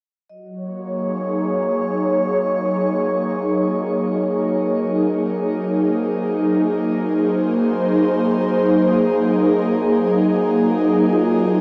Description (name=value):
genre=ambient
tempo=69 BPM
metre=3/4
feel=straight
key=Eb dorian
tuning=A4 = 440 Hz
part: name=airy breathy pad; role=sustained chords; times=0.3-11.6 s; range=Gb3 to Db5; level=-19 LUFS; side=equal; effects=chorus, shimmer reverb
part: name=vibraphone with soft mallets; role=arpeggios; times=0.3-11.6 s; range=F4 to Eb5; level=-31 LUFS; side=equal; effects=none
room=wet lush hall reverb, RT60 2.8 s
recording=dark, warm production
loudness=-19 LUFS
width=mono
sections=0.3-11.6 A section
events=none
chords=0.3 Ebm7; 5.5 Ab9/Gb; 10.7 Ebm